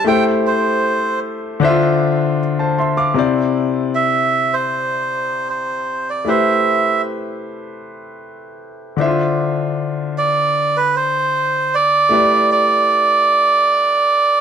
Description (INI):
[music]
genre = soul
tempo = 77 BPM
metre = 4/4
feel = straight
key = D dorian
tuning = A4 = 440 Hz
[part]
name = melodica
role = melody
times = 0.0-14.4 s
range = B4 to G5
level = -15 LUFS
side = right 3 dB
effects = none
[part]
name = clear grand piano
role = accompaniment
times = 0.0-14.4 s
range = C3 to D6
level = -18 LUFS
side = left 3 dB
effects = none
[sound]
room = moderate echo chamber reverb, RT60 1.5 s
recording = none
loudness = -14 LUFS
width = side -8 dB against mid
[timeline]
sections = 0.0-3.2 A section; 3.2-14.4 B section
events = none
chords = 0.1 Am7; 1.6 Dm9; 3.2 C; 6.3 Am9; 9.0 Dm9; 12.1 A7sus4